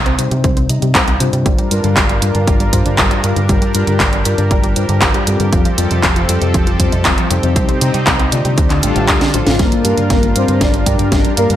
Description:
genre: italo disco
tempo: 118 BPM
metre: 4/4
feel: straight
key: G minor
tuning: A4 = 440 Hz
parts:
  - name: fingered electric bass with an envelope filter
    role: bass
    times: 0.0-11.6 s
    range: F1 to C3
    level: -17 LUFS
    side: equal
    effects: none
  - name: analog pluck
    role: arpeggios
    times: 0.1-11.6 s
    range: A2 to C4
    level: -24 LUFS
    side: right 3 dB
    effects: chorus, digital delay
  - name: house drum kit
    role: drums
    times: 0.1-11.6 s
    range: handclaps, hi-hat, snare drum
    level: -17 LUFS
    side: equal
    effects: overdrive, gated reverb
  - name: mellow tine electric piano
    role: stabs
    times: 0.2-11.6 s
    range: G2 to G5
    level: -20 LUFS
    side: left 3 dB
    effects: medium stereo tremolo, low-pass filter, digital delay
  - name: electronic kick drum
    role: drums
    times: 0.4-11.2 s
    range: none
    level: -16 LUFS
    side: equal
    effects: overdrive
  - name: lush unison pad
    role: sustained chords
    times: 1.5-11.6 s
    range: D3 to Bb4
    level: -21 LUFS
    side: equal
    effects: chorus
  - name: analog synth brass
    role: melody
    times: 8.8-11.6 s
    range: F3 to D5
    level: -18 LUFS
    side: left 1 dB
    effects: chorus, digital delay
room: light reverb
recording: none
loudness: -11 LUFS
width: side -12 dB against mid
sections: 0.0-9.6 A section; 9.6-11.6 B section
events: drum fill 9.2-9.6, 9.6-11.6; band accent 9.5; filter sweep on tine electric piano 9.6-11.6; filter sweep on analog polysynth 9.6-11.6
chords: 0.0 Cm; 1.5 Gm7; 5.5 Fadd9; 7.6 Cm; 8.6 Dm; 9.6 Gm7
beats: 0.44 0.95 | 1.46 1.97 2.48 2.98 | 3.49 4.00 4.51 5.02 | 5.53 6.03 6.54 7.05 | 7.56 8.07 8.58 9.09 | 9.59 10.10 10.61 11.12

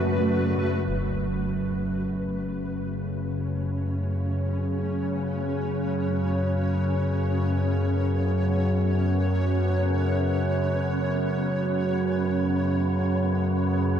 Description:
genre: dark ambient drone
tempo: free time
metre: none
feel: none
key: F# minor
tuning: A4 = 441 Hz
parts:
  - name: granular cloud pad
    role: sustained chords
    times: 0.0-14.0 s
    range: F#2 to D5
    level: -31 LUFS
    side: right 1 dB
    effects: built-in reverb
  - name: analog drone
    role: drone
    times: 0.0-14.0 s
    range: F#2 to C#3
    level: -24 LUFS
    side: equal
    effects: chorus
  - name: concert bass drum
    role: percussion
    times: 0.9-1.1 s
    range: none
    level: -39 LUFS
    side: equal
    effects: low-pass filter on kick
  - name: wind-like tuned noise texture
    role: texture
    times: 2.2-14.0 s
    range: B3 to B4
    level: -38 LUFS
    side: equal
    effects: built-in reverb
room: wet cathedral reverb, RT60 6.6 s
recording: in a vast, echoing space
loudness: -23 LUFS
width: side -9 dB against mid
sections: 0.9-14.0 A section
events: fade-in on ambient pad 0.9-14.0; fade-in on synth texture 0.9-14.0; fade-in on drum 0.9-14.0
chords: 0.0 Bm7/F#; 0.9 F#m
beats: free time

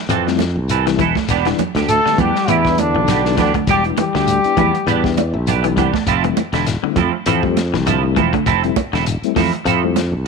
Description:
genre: afrobeat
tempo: 100 BPM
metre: 4/4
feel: swing 56% on 16ths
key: unclear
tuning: A4 = 440 Hz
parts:
  - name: electric guitar at the edge of break-up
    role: arpeggios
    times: 0.1-9.8 s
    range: D3 to G3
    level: -24 LUFS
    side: left 14 dB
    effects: none
  - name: clean electric guitar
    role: stabs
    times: 0.1-10.0 s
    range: E3 to A4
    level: -21 LUFS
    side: right 14 dB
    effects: analog chorus
  - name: modern bright fingered electric bass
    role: bass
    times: 0.1-10.3 s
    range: E1 to F2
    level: -20 LUFS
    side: equal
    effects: tube saturation
  - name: crunchy breakbeat drum kit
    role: drums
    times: 0.1-10.1 s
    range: hi-hat, kick drum, snare drum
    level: -26 LUFS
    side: left 4 dB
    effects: none
  - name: shekere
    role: percussion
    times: 0.1-10.1 s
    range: none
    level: -26 LUFS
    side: left 7 dB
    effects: none
  - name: mellow tonewheel organ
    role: accompaniment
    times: 0.3-10.0 s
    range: G3 to A5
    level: -23 LUFS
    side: left 17 dB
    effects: slow rotary speaker, chorus vibrato
  - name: congas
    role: percussion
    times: 0.4-10.1 s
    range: none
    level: -23 LUFS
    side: right 16 dB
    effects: none
  - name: bright trombone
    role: melody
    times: 1.9-5.2 s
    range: D4 to A4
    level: -18 LUFS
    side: left 1 dB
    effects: none
  - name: breathy tenor saxophone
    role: second line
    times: 1.9-5.2 s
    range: D4 to A4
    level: -26 LUFS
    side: right 14 dB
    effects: none
  - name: mellow bass clarinet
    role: second line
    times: 1.9-5.1 s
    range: D3 to A3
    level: -24 LUFS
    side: left 16 dB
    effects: none
room: light reverb, studio reverb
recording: 1960s-style stereo with parts hard left and right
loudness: -14 LUFS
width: side -4 dB against mid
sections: 0.0-10.3 A section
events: tonewheel organ fill 4.9-6.1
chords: 0.0 Fmaj7; 1.3 Em7; 6.1 Fmaj7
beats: 0.09 0.69 | 1.29 1.89 2.49 3.08 | 3.68 4.28 4.88 5.48 | 6.08 6.67 7.27 7.87 | 8.47 9.06 9.66 10.26

